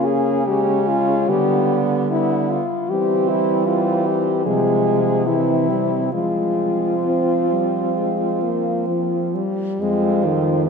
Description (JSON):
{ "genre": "classical, lyrical piece for horn quartet", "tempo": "63-79 BPM", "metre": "4/4", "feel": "rubato", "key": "F minor", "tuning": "A4 = 436 Hz", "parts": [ { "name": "warm French horn", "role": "melody", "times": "0.0-10.6 s", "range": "E4 to Ab4", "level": "-21 LUFS", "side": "left 5 dB", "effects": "none" }, { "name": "clear French horn", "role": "second line", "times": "0.0-10.7 s", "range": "Ab3 to Db4", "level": "-23 LUFS", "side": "right 9 dB", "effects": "none" }, { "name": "mellow French horn", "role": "accompaniment", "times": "0.0-10.7 s", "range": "Eb3 to C4", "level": "-23 LUFS", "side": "left 2 dB", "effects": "none" }, { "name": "warm French horn", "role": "bass", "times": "0.0-10.7 s", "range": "F2 to F3", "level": "-24 LUFS", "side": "right 2 dB", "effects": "none" } ], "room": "wet church reverb, RT60 2.8 s", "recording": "none", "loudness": "-17 LUFS", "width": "side -5 dB against mid", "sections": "0.0-9.8 A section", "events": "none", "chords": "0.0 Db5; 1.3 G/D; 2.9 C/E; 4.5 Fm/C; 5.3 C; 6.1 Fm; 9.8 F5", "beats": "0.48 1.29 2.11 | 2.90 3.66 4.45 5.26 | 6.13 7.05 7.97 8.88 | 9.81 10.68" }